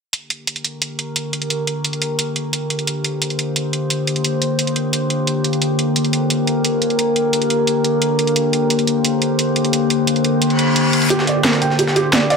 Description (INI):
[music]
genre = dark technical drum and bass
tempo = 175 BPM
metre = 4/4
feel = straight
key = G minor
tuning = A4 = 440 Hz
[part]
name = metallic inharmonic drone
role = sustained chords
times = 0.7-12.4 s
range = D3 to C5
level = -18 LUFS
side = left 1 dB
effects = chorus, built-in reverb
[part]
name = drum and bass drum kit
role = drums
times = 0.1-12.4 s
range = hi-hat, snare drum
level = -19 LUFS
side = right 1 dB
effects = studio reverb
[part]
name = reverse cymbal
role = sound effects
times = 10.5-11.1 s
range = none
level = -21 LUFS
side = left 1 dB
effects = none
[part]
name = felt-muted upright piano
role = arpeggios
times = 11.1-12.4 s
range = G4 to G5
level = -18 LUFS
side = right 3 dB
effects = digital delay
[part]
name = breakbeat sampler-style drum kit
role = drums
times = 11.1-12.4 s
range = hi-hat, snare drum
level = -23 LUFS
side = equal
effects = overdrive, high-pass filter on hats, studio reverb, high-pass filter on snare, high-pass filter on room
[sound]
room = moderate digital room reverb, RT60 1.1 s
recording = dark, warm production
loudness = -16 LUFS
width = side -5 dB against mid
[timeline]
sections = 0.1-12.4 A section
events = reverse cymbal 10.5-11.1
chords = 0.1 Gm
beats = | 0.13 0.47 0.82 1.16 | 1.50 1.85 2.19 2.53 | 2.87 3.22 3.56 3.90 | 4.25 4.59 4.93 5.27 | 5.62 5.96 6.30 6.65 | 6.99 7.33 7.67 8.02 | 8.36 8.70 9.05 9.39 | 9.73 10.07 10.42 10.76 | 11.10 11.45 11.79 12.13